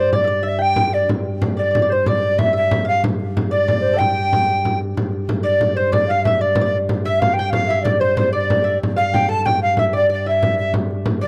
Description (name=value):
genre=medieval dance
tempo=124 BPM (dotted quarters)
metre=6/8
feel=straight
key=unclear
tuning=A4 = 440 Hz
part: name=mellow hollow tenor recorder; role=melody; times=0.0-11.3 s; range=C5 to A5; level=-21 LUFS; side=equal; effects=none
part: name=bright tenor recorder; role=second line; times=0.0-11.3 s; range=C5 to A5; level=-26 LUFS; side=equal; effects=none
part: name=lute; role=second line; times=0.0-11.3 s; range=A4 to G5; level=-28 LUFS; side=equal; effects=none
part: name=pipe organ, sparkling flutes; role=drone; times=0.0-11.3 s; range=G2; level=-27 LUFS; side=equal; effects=none
part: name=frame drum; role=percussion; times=0.1-11.3 s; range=none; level=-24 LUFS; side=equal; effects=none
room=light reverb, studio reverb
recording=dry, close 1970s-style studio recording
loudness=-18 LUFS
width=mono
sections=0.0-5.0 A section; 5.0-11.3 A section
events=none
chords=none